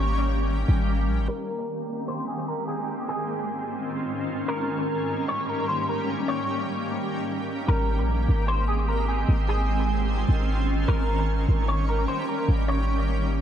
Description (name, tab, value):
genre	hip hop, atmospheric cloud-rap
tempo	150 BPM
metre	4/4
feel	half-time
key	Ab major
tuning	A4 = 440 Hz
part	electric guitar with an envelope filter	melody	0.0-13.2 s	Ab4 to Db5	-30 LUFS	equal	ensemble chorus, low-pass filter, analog delay
part	shimmering ambient pad	sustained chords	0.0-13.4 s	Ab2 to G4	-28 LUFS	equal	chorus, built-in reverb, low-pass filter
part	clean 808-style bass	bass	0.0-1.3, 7.7-13.4 s	Ab1 to Bb1	-23 LUFS	equal	none
room	light reverb, digital ambience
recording	echo-heavy mix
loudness	-23 LUFS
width	side -9 dB against mid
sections	0.0-1.3 A section; 1.3-7.7 B section; 7.7-13.4 C section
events	filter sweep 1.3-7.7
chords	0.0 Eb7/Ab; 1.3 Abmaj9; 2.9 Dbmaj9/Ab; 4.5 Eb7/Ab; 7.7 Abmaj9; 9.3 Dbmaj9/Ab; 10.9 Eb7/Ab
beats	0.08 0.48 0.88 | 1.28 1.68 2.08 2.48 | 2.88 3.28 3.68 4.08 | 4.48 4.88 5.28 5.68 | 6.08 6.48 6.88 7.28 | 7.68 8.08 8.48 8.88 | 9.28 9.68 10.08 10.48 | 10.88 11.28 11.68 12.08 | 12.48 12.88 13.28